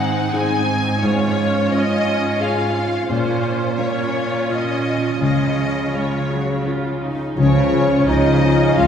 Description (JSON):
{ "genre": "cinematic", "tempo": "86 BPM", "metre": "3/4", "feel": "rubato", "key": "Db major", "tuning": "A4 = 440 Hz", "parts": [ { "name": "clear symphonic violin section", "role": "melody", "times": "0.0-8.9 s", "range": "C5 to Ab5", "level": "-24 LUFS", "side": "left 2 dB", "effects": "none" }, { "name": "felt-muted upright piano", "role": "accompaniment", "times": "0.0-8.9 s", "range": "Db2 to Db5", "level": "-23 LUFS", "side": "left 1 dB", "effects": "none" }, { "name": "rich symphonic viola section", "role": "accompaniment", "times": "0.0-8.9 s", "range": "Gb3 to F4", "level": "-24 LUFS", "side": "right 1 dB", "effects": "none" }, { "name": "concert harp", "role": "arpeggios", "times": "0.0-8.9 s", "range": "Ab2 to F5", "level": "-26 LUFS", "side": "left 3 dB", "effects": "none" }, { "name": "rich symphonic cello section", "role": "bass", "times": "0.0-8.9 s", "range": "Ab2 to Db3", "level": "-23 LUFS", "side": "right 4 dB", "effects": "none" }, { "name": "large flute ensemble", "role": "second line", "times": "7.4-8.9 s", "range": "Db5 to F5", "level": "-23 LUFS", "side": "equal", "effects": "none" }, { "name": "warm clarinet", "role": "second line", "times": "7.4-8.9 s", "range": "Db4 to F4", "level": "-22 LUFS", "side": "left 1 dB", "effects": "none" }, { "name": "warm symphonic violin section", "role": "second line", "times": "7.4-8.9 s", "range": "Db5 to F5", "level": "-25 LUFS", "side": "left 3 dB", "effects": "none" }, { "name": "mellow French horn section", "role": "sustained chords", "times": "7.4-8.9 s", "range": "F3 to Ab3", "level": "-23 LUFS", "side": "left 4 dB", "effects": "none" }, { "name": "rich symphonic double bass section", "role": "bass", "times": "7.4-8.9 s", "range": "Db2", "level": "-21 LUFS", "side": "equal", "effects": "none" } ], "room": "wet scoring stage reverb, RT60 1.9 s", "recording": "heard from further back in the room", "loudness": "-16 LUFS", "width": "side -8 dB against mid", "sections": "0.0-7.4 A section; 7.4-8.9 A section", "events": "none", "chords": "0.0 Ab; 1.0 Db/Ab; 3.1 Bbmadd9; 5.2 Db", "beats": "0.34 | 1.03 1.72 2.40 | 3.10 3.79 4.49 | 5.21 5.94 6.66 | 7.37 8.08 8.78" }